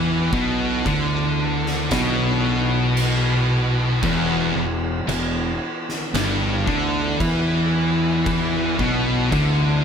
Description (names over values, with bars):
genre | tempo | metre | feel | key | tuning
stoner and doom metal | 57 BPM | 4/4 | straight | E minor | A4 = 439 Hz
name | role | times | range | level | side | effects
tonewheel organ | sustained chords | 0.0-9.8 s | E3 to E4 | -33 LUFS | left 1 dB | none
scooped high-gain guitar | riff | 0.0-9.8 s | E2 to E3 | -25 LUFS | equal | distortion
thick fuzz guitar | riff | 0.0-9.8 s | E2 to E3 | -24 LUFS | left 8 dB | distortion
thick fuzz guitar | riff | 0.0-9.8 s | E2 to E3 | -24 LUFS | right 6 dB | distortion
fuzz fingered electric bass | bass | 0.0-9.8 s | E1 to E2 | -27 LUFS | equal | overdrive
oversized low-tuned drum kit | drums | 0.3-9.6 s | crash cymbal, kick drum, snare drum | -27 LUFS | right 1 dB | none
room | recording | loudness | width
studio ambience | none | -18 LUFS | side -7 dB against mid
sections
0.0-9.8 A section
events
none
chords
0.0 Em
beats
0.85 1.91 2.97 | 4.03 5.09 6.14 7.20 | 8.26 9.32